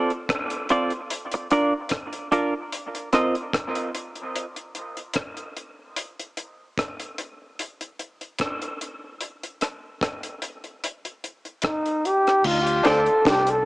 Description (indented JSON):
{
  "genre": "dub reggae",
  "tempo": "74 BPM",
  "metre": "4/4",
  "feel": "swing 55% on 16ths",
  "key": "D phrygian",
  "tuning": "A4 = 437 Hz",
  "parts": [
    { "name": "semi-hollow electric guitar", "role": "accompaniment", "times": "0.0-3.3, 12.9-13.1 s", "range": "C4 to Eb5", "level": "-24 LUFS", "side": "right 1 dB", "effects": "wide subtle chorus, high-pass filter, dub echo" },
    { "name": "deep reggae drum kit", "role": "drums", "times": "0.1-13.6 s", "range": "crash cymbal, hi-hat, kick drum, rim click, snare drum", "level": "-26 LUFS", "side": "equal", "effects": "none" },
    { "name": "mellow flugelhorn", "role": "melody", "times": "11.7-13.7 s", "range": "Eb4 to A4", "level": "-19 LUFS", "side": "equal", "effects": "dub echo" },
    { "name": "vintage muted fingered electric bass", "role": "bass", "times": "12.4-13.6 s", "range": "C2 to D2", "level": "-30 LUFS", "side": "equal", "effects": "none" },
    { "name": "bright upright piano", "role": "stabs", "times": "12.8-13.0 s", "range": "D4 to C5", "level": "-27 LUFS", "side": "left 1 dB", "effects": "high-pass filter, dub echo" }
  ],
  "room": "wet spring reverb, RT60 2.3 s",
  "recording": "small speaker sound",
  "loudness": "-22 LUFS",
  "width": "side -21 dB against mid",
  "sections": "0.0-12.4 A section; 12.4-13.7 B section",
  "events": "break 0.0-12.4",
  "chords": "0.0 Dm7; 1.1 Dm; 2.7 F7sus4; 4.3 N.C.; 12.4 Dm7",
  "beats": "0.29 1.10 1.91 | 2.72 3.53 4.34 5.15 | 5.96 6.77 7.58 8.39 | 9.20 10.01 10.82 11.63 | 12.44 13.25"
}